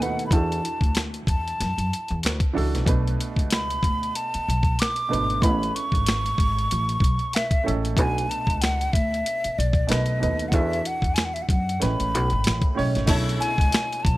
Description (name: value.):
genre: R&B, neo-soul.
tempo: 94 BPM.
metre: 4/4.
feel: swing 56% on 16ths.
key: B dorian.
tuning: A4 = 443 Hz.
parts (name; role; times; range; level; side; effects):
breathy mellow silver concert flute; melody; 0.0-14.2 s; D5 to D6; -27 LUFS; equal; slapback echo.
warm upright piano; accompaniment; 0.0-14.2 s; A2 to C#5; -30 LUFS; right 4 dB; none.
upright bass; bass; 0.0-14.2 s; G#1 to F#2; -26 LUFS; equal; none.
boom bap sampler-style drum kit; drums; 0.0-14.2 s; crash cymbal, finger snaps, hi-hat, kick drum, snare drum; -24 LUFS; equal; none.
edgy saxophone section; stabs; 13.1-13.5 s; C#3 to E4; -30 LUFS; left 1 dB; none.
room: little or no reverb.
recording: none.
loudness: -21 LUFS.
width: side -18 dB against mid.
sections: 0.0-13.1 A section; 13.1-14.2 B section.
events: none.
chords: 0.3 E9sus4; 2.9 Bm7; 5.4 Amaj9; 8.0 Bm7; 9.9 B7; 10.5 E9sus4; 11.8 Amaj9; 13.1 Bm11.